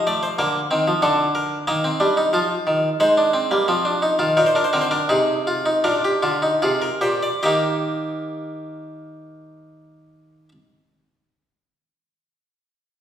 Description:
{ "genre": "classical, baroque-style 3-part fugue for harpsichord", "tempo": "72-95 BPM", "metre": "4/4", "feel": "straight", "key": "Eb major", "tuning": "A4 = 442 Hz", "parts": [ { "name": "harpsichord", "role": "solo", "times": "0.0-10.5 s", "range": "Bb2 to Eb5", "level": "-18 LUFS", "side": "equal", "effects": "none" } ], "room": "wet recital hall reverb, RT60 1.6 s", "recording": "recorded in a church or concert hall", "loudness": "-17 LUFS", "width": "side -10 dB against mid", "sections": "0.0-7.4 A section; 7.4-10.7 B section", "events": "slowing down 0.4-7.4", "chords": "0.4 Bb/D; 1.7 Eb; 3.0 Ab; 4.4 Bb7sus4; 5.8 Bb; 7.4 Eb" }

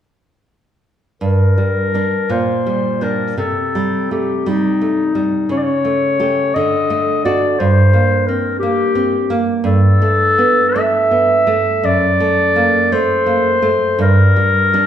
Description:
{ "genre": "romantic duo for clarinet and classical guitar", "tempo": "52-60 BPM (dotted quarters)", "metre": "6/8", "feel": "rubato", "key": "G minor", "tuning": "A4 = 440 Hz", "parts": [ { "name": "clear clarinet", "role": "melody", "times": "1.2-14.9 s", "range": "Eb4 to E5", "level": "-15 LUFS", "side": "left 2 dB", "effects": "none" }, { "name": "nylon-string guitar", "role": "accompaniment", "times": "1.2-14.9 s", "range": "F#2 to G4", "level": "-15 LUFS", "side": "right 2 dB", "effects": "none" } ], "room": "wet large studio reverb, RT60 1.2 s", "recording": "band playing live in one room", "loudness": "-12 LUFS", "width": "side -9 dB against mid", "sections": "1.2-14.9 A section", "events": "none", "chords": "1.2 Gm; 2.3 Gm/Bb; 3.4 Cm; 5.5 A7/C#; 6.6 D; 7.6 Gm; 9.7 A5/G; 11.9 D/F#; 14.0 Gm" }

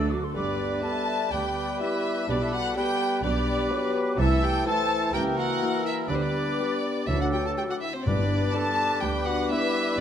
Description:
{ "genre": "quick classical-period movement for symphony orchestra", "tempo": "125 BPM", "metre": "4/4", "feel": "rubato", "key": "G major", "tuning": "A4 = 439 Hz", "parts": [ { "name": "warm studio violin section", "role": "melody", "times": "0.0-10.0 s", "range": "G4 to E5", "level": "-36 LUFS", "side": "left 8 dB", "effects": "none" }, { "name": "clear chamber violin section", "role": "second line", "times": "0.0-10.0 s", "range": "C5 to A5", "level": "-32 LUFS", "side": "left 2 dB", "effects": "none" }, { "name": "clear oboe", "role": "second line", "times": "0.0-10.0 s", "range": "A4 to B4", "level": "-35 LUFS", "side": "right 1 dB", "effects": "none" }, { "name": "flute section", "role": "second line", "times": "0.0-10.0 s", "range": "C6 to E6", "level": "-37 LUFS", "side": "equal", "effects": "none" }, { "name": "mellow clarinet", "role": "second line", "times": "0.0-10.0 s", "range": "C4 to A4", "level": "-34 LUFS", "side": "left 2 dB", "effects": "none" }, { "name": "mellow bassoon", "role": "accompaniment", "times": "0.0-10.0 s", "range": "E3 to G3", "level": "-32 LUFS", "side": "right 2 dB", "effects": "none" }, { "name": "rich studio viola section", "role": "accompaniment", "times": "0.0-9.9 s", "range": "F#3 to A4", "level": "-36 LUFS", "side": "right 1 dB", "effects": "none" }, { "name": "mellow French horn section", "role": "sustained chords", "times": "0.0-10.0 s", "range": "A3 to G4", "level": "-32 LUFS", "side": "left 4 dB", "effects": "none" }, { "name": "rich chamber cello section", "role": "bass", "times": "0.0-9.4 s", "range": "D2 to D3", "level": "-34 LUFS", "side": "right 2 dB", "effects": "none" }, { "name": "warm studio double bass section", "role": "bass", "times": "0.0-10.0 s", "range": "G1 to D2", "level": "-31 LUFS", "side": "right 2 dB", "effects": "none" }, { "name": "timpani", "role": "percussion", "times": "0.0-0.1, 7.1-8.8 s", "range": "G2 to D3", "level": "-33 LUFS", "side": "left 1 dB", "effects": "none" }, { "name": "mellow trumpet section", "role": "stabs", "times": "0.3-10.0 s", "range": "C5 to A5", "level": "-32 LUFS", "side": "right 1 dB", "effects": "none" } ], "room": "moderate scoring stage reverb, RT60 1.7 s", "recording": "close, detailed microphones", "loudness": "-23 LUFS", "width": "side -9 dB against mid", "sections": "0.3-10.0 A section", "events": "none", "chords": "0.3 G; 2.3 G/B; 4.2 Am/C; 5.1 F#7b9/C#; 6.1 G/D; 7.1 D; 8.1 G" }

